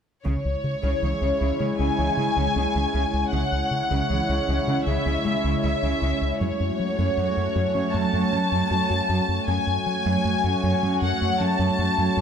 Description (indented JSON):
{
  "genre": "cinematic",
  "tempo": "78 BPM",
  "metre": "4/4",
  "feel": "straight",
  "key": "C# minor",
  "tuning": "A4 = 441 Hz",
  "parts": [
    { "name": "warm symphonic violin section", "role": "melody", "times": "0.3-12.2 s", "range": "C#5 to A5", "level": "-26 LUFS", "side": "left 2 dB", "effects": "none" },
    { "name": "warbly tape-like pad", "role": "sustained chords", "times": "0.5-12.2 s", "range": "G#3 to C#5", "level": "-27 LUFS", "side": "right 1 dB", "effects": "chorus, built-in reverb" },
    { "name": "harp-like synth pluck", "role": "arpeggios", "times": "0.3-12.2 s", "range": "C#3 to F#4", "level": "-31 LUFS", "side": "right 2 dB", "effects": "chorus, tape echo" },
    { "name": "rubbery square bass", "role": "riff", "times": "0.3-12.2 s", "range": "C#2 to F#3", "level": "-27 LUFS", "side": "left 1 dB", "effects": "none" },
    { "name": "rich symphonic cello section", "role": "bass", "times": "0.3-12.2 s", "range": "F#2 to C#3", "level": "-30 LUFS", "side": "right 3 dB", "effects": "none" }
  ],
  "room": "moderate scoring stage reverb, RT60 1.6 s",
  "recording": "none",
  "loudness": "-21 LUFS",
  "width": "side -7 dB against mid",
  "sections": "0.3-12.2 A section",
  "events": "none",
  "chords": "0.3 C#m; 6.4 F#m"
}